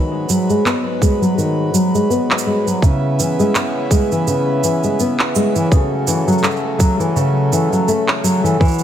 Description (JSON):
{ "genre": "folktronica", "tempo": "83 BPM", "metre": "4/4", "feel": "swing 56% on 16ths", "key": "unclear", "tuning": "A4 = 440 Hz", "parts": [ { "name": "pedal harmonium", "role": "sustained chords", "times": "0.0-8.8 s", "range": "E2 to B4", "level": "-21 LUFS", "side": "equal", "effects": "none" }, { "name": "nylon-string guitar", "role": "arpeggios", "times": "0.0-8.8 s", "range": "C#3 to B3", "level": "-16 LUFS", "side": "equal", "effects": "low-pass filter, ping-pong delay" }, { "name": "electronic cabasa and handclaps", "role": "drums", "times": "0.3-8.8 s", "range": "none", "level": "-22 LUFS", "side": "right 2 dB", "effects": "small room reverb" }, { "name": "electronic kick drum", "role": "drums", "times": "1.0-8.8 s", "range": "none", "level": "-14 LUFS", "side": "equal", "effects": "small room reverb" } ], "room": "moderate echo chamber reverb, RT60 1.9 s, studio ambience", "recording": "none", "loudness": "-14 LUFS", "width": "side -10 dB against mid", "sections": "0.0-8.8 A section", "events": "filter sweep on nylon-string guitar 0.0-8.8", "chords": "0.0 G#m7; 2.8 C#m7; 5.7 A6/C#" }